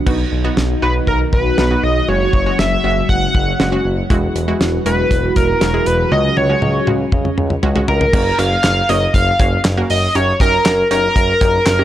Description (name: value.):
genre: synth-pop.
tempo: 119 BPM.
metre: 4/4.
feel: straight.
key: F# major from 8.1 s.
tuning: A4 = 440 Hz.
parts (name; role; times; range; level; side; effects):
ensemble organ-string; sustained chords; 0.0-8.1 s; G#2 to G#4; -21 LUFS; equal; phaser, ensemble chorus.
wide unison pluck; accompaniment; 0.1-11.8 s; G#3 to C#5; -23 LUFS; right 1 dB; none.
smooth synth bass; bass; 0.1-11.8 s; E1 to C#2; -19 LUFS; equal; none.
damped 70s drum kit; drums; 0.1-11.8 s; crash cymbal, handclaps, hi-hat, kick drum, snare drum, toms; -18 LUFS; equal; none.
octave-doubled lead; melody; 0.8-11.8 s; A#4 to F#5; -17 LUFS; equal; chorus, tape echo.
room: small room ambience.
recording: dry, gritty hardware recording, cassette tape.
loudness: -13 LUFS.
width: side -12 dB against mid.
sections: 0.1-8.1 A section; 8.1-11.8 B section.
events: drum fill 6.1-8.1.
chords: 0.1 B; 2.1 F#sus2; 4.1 Eadd9; 6.1 C#sus4; 8.1 F#; 10.2 D#7/F#.